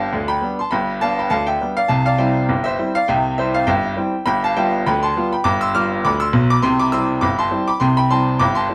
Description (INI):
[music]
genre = ragtime piano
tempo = 101 BPM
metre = 2/4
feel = swing 54% on 16ths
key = C major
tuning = A4 = 436 Hz
[part]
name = clear baby grand piano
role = solo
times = 0.0-8.7 s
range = G1 to F6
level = -18 LUFS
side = equal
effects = none
[sound]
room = moderate studio reverb, RT60 0.9 s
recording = band playing live in one room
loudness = -18 LUFS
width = mono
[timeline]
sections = 0.0-8.7 A section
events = none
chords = 0.0 G7; 1.9 C; 4.3 G7; 6.6 C